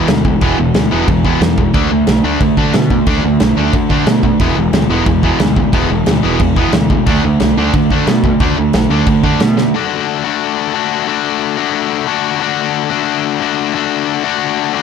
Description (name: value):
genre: punk rock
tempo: 180 BPM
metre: 4/4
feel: straight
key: unclear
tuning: A4 = 440 Hz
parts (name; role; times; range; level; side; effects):
- distorted electric guitar; riff; 0.0-14.8 s; D3 to F#4; -15 LUFS; left 12 dB; overdrive
- sludgy distorted guitar; riff; 0.0-9.7 s; E2 to D4; -15 LUFS; right 13 dB; overdrive
- fuzz picked electric bass; bass; 0.1-9.6 s; E1 to D3; -18 LUFS; right 1 dB; overdrive
- big rock drum kit; drums; 0.1-9.7 s; crash cymbal, kick drum, snare drum; -16 LUFS; equal; none
room: light reverb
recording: none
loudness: -11 LUFS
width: side -7 dB against mid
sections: 0.0-9.7 A section; 9.7-14.8 B section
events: drum fill 9.6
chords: 0.0 E; 1.7 D5; 4.4 E; 7.1 D5; 9.7 D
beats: 0.09 | 0.42 0.75 1.08 1.42 | 1.75 2.08 2.41 2.75 | 3.08 3.41 3.74 4.08 | 4.41 4.74 5.07 5.41 | 5.74 6.07 6.41 6.74 | 7.07 7.41 7.74 8.07 | 8.41 8.74 9.07 9.41 | 9.74 10.07 10.41 10.74 | 11.07 11.41 11.74 12.07 | 12.41 12.74 13.07 13.40 | 13.74 14.07 14.40 14.73